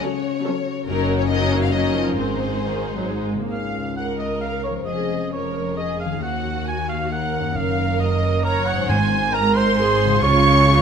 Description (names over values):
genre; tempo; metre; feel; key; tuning
classical, dramatic, fast romantic movement for symphony orchestra; 135 BPM; 3/4; straight; Db major; A4 = 440 Hz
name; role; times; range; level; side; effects
warm symphonic violin section; melody; 0.0-10.8 s; Bb4 to Db6; -28 LUFS; left 3 dB; none
rich symphonic violin section; second line; 0.0-10.8 s; C#4 to Db6; -29 LUFS; left 2 dB; none
rich symphonic viola section; accompaniment; 0.0-10.8 s; Eb3 to Db5; -26 LUFS; right 3 dB; none
concert harp; arpeggios; 0.0-10.8 s; Gb2 to Eb5; -27 LUFS; left 10 dB; none
timpani; percussion; 0.0-0.2, 8.9-9.5 s; Ab2 to C#3; -27 LUFS; equal; none
rich symphonic cello section; bass; 0.9-10.8 s; Db2 to Db3; -24 LUFS; right 2 dB; none
warm studio double bass section; bass; 0.9-10.8 s; F1 to Eb2; -27 LUFS; right 3 dB; none
warm cor anglais; second line; 3.5-10.8 s; Bb4 to Ab5; -24 LUFS; right 3 dB; none
room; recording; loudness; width
moderate scoring stage reverb, RT60 1.8 s; close, detailed microphones; -18 LUFS; side -7 dB against mid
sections
0.0-3.5 A section; 3.5-10.8 B section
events
none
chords
0.0 F#m/C#; 0.9 Ebm7/Gb; 2.2 Ab; 3.5 Db; 4.9 Db/F; 6.2 Ebm; 7.6 Ebm/Gb; 8.9 Ab; 10.2 Db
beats
0.02 0.45 | 0.87 1.29 1.73 | 2.17 2.62 3.06 | 3.52 3.97 4.42 | 4.88 5.33 5.78 | 6.22 6.67 7.12 | 7.56 8.01 8.45 | 8.89 9.34 9.78 | 10.23 10.68